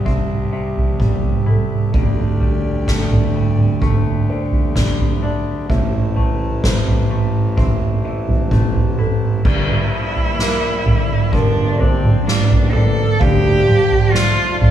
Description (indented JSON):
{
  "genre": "post-rock",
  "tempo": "64 BPM",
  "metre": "4/4",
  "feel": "straight",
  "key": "G dorian",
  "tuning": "A4 = 440 Hz",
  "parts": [
    { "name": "pedal harmonium", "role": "sustained chords", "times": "0.0-14.7 s", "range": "F3 to A5", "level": "-30 LUFS", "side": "left 2 dB", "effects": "none" },
    { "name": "felt-muted upright piano", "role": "arpeggios", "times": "0.0-14.7 s", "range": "A4 to F5", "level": "-29 LUFS", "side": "right 2 dB", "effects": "none" },
    { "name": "twangy electric guitar", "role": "arpeggios", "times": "0.0-14.7 s", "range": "G2 to E4", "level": "-28 LUFS", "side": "left 3 dB", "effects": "none" },
    { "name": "fuzz fingered electric bass", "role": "bass", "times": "0.0-13.6 s", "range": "G1 to D2", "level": "-23 LUFS", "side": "equal", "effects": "overdrive" },
    { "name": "soft-mallet drum kit", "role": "drums", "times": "0.1-14.7 s", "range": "crash cymbal, kick drum, snare drum, toms", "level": "-16 LUFS", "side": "right 1 dB", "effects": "none" },
    { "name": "rich cello", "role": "melody", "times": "9.4-14.7 s", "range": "C4 to A4", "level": "-19 LUFS", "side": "right 1 dB", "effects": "none" }
  ],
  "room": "light reverb",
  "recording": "band playing live in one room, small room ambience",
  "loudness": "-14 LUFS",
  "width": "side -10 dB against mid",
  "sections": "0.0-9.5 A section; 9.5-14.7 B section",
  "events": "build-up 9.5-14.7",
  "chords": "0.0 C; 1.9 Dsus4; 5.7 Am; 9.5 Gm7; 13.2 Dm"
}